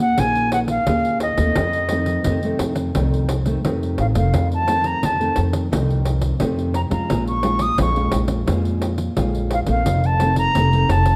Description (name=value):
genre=samba and choro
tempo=87 BPM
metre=4/4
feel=straight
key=unclear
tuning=A4 = 440 Hz
part: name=concert flute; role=melody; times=0.0-11.2 s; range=Eb5 to Eb6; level=-23 LUFS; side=equal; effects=none
part: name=nylon-string guitar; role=accompaniment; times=0.0-11.2 s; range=F2 to Ab4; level=-26 LUFS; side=equal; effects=none
part: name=upright bass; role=bass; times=0.0-11.2 s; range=F1 to F2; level=-23 LUFS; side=equal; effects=none
part: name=pandeiro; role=percussion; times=0.2-11.2 s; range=none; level=-28 LUFS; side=equal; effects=none
room=moderate large studio reverb, RT60 1.4 s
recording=dark, warm production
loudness=-20 LUFS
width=mono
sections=0.0-11.2 A section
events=none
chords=0.0 Eb7sus4; 1.6 F7; 7.1 Bbm7; 9.9 F7